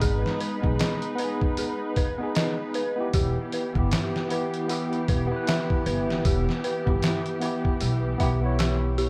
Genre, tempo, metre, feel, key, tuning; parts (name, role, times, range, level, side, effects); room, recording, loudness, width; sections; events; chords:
trip hop; 77 BPM; 4/4; swing 58% on 16ths; A4 = 438 Hz
overdriven tine electric piano; accompaniment; 0.0-9.1 s; B3 to A#5; -33 LUFS; equal; tremolo, tape echo
muted studio string section; sustained chords; 0.0-9.1 s; E3 to B4; -34 LUFS; equal
dark detuned synth bell; arpeggios; 0.0-9.1 s; G4 to E5; -35 LUFS; equal; chorus, tape echo
upright bass; bass; 0.0-9.1 s; E1 to B1; -30 LUFS; equal
trip hop sampler-style drum kit; drums; 0.0-9.1 s; hi-hat, kick drum, snare drum; -29 LUFS; equal
light reverb, digital ambience; -26 LUFS; mono
0.0-9.1 A section
0.0 G#m; 3.1 Em